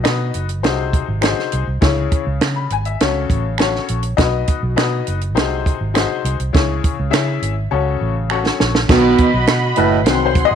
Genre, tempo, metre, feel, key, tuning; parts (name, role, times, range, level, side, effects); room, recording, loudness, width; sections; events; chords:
uptempo 1960s-style soul; 102 BPM; 4/4; straight; A4 = 440 Hz
bright upright piano; accompaniment; 0.0-10.6 s; B2 to B5; -20 LUFS; left 11 dB
vintage muted fingered electric bass; bass; 0.0-10.6 s; F#1 to C#3; -20 LUFS; right 1 dB
finger snap; percussion; 0.0-9.6 s; -26 LUFS; right 12 dB
compact cocktail drum kit; drums; 0.1-10.5 s; crash cymbal, hi-hat, kick drum, snare drum; -17 LUFS; right 2 dB
dark studio violin section; second line; 8.9-10.6 s; F#4 to B#5; -19 LUFS; right 1 dB
growling baritone saxophone; riff; 8.9-10.0 s; A2 to B2; -16 LUFS; right 10 dB
light reverb, small room ambience; 1960s-style stereo with parts hard left and right; -15 LUFS; side -8 dB against mid
0.0-8.9 A section; 8.9-10.6 B section
drum fill 7.7-8.9; upright piano solo 8.9-10.6
0.0 B; 0.6 G#7; 1.8 C#m; 3.0 F#m; 4.2 B; 5.4 G#7; 6.5 C#m; 7.7 F#m; 8.9 B